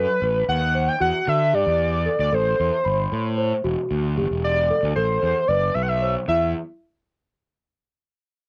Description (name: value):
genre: progressive instrumental, band music in an uneven meter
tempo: 228 BPM (eighths)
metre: 5/8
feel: straight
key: E minor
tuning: A4 = 445 Hz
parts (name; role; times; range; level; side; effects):
- pulse-width lead; melody; 0.0-6.5 s; B4 to G5; -24 LUFS; equal; chorus, cassette tape
- celesta; arpeggios; 0.0-6.5 s; E4 to B5; -29 LUFS; equal; cassette tape
- fuzz fingered electric bass; bass; 0.0-6.5 s; E1 to D3; -27 LUFS; equal; overdrive
room: light reverb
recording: home recording on cassette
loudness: -22 LUFS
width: mono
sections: 0.0-6.3 A section; 6.3-7.6 B section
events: none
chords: 0.0 B7; 1.0 Emadd9; 2.3 Am7; 3.6 Emadd9; 5.0 Amadd9; 6.3 N.C.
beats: 0.22 0.48 0.75 | 1.01 1.27 1.54 1.80 2.07 | 2.33 2.59 2.86 3.12 3.39 | 3.65 3.91 4.18 4.44 4.70 | 4.97 5.23 5.50 5.76 6.02 | 6.29